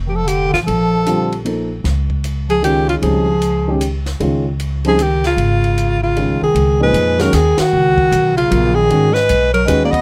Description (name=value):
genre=modal jazz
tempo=153 BPM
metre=3/4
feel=swing 65% on 8ths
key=Db mixolydian from 6.5 s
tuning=A4 = 440 Hz
part: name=upright bass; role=bass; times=0.0-10.0 s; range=F1 to F2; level=-21 LUFS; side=equal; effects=none
part: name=bright alto saxophone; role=melody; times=0.1-10.0 s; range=F4 to Eb5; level=-18 LUFS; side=equal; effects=none
part: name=breathy bass clarinet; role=second line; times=0.1-10.0 s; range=Db3 to Cb4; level=-22 LUFS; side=equal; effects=none
part: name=compact cocktail drum kit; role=drums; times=0.3-10.0 s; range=hi-hat, kick drum, ride cymbal, snare drum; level=-31 LUFS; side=equal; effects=none
part: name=dark baby grand piano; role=accompaniment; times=1.1-9.9 s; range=Bb2 to Bb4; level=-21 LUFS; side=equal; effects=none
room=light reverb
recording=none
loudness=-15 LUFS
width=mono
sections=0.0-6.5 A section; 6.5-10.0 B section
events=band accent 7.5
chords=0.0 Bbmaj7; 1.8 Dbadd9; 6.5 Db9sus4